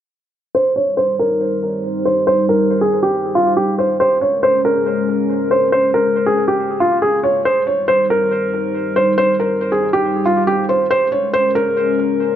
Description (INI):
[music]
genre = hip hop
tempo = 139 BPM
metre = 4/4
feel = half-time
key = C phrygian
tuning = A4 = 440 Hz
[part]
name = felt-muted upright piano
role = melody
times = 0.5-12.4 s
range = F4 to Db5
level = -14 LUFS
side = equal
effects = low-pass filter, tape echo
[part]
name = dark analog pad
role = sustained chords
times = 1.0-12.4 s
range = G3 to C5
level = -21 LUFS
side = left 1 dB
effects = chorus, low-pass filter
[sound]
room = moderate echo chamber reverb, RT60 1.6 s, small room ambience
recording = echo-heavy mix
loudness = -14 LUFS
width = side -10 dB against mid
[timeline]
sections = 0.5-12.4 A section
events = filter sweep 0.5-12.4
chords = 0.5 Cm; 4.0 Bbm7; 7.5 Cm; 10.9 Bbm7